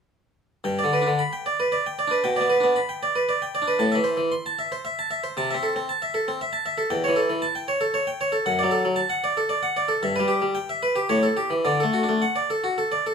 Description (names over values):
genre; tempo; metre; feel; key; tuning
classical, baroque-style suite movement for harpsichord; 114 BPM; 3/4; rubato; G major, D major from 6.9 s; A4 = 441 Hz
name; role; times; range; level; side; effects
harpsichord; solo; 0.6-13.1 s; E2 to C6; -21 LUFS; equal; none
room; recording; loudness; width
moderate large studio reverb, RT60 1.2 s; minimal, uncompressed stereo recording; -21 LUFS; side -6 dB against mid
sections
0.7-13.1 A section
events
none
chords
0.7 G; 2.2 G/B; 3.8 Am; 5.4 Am/C; 6.9 A7/E; 8.5 D/F#; 10.0 Em/G; 11.1 A7; 11.6 D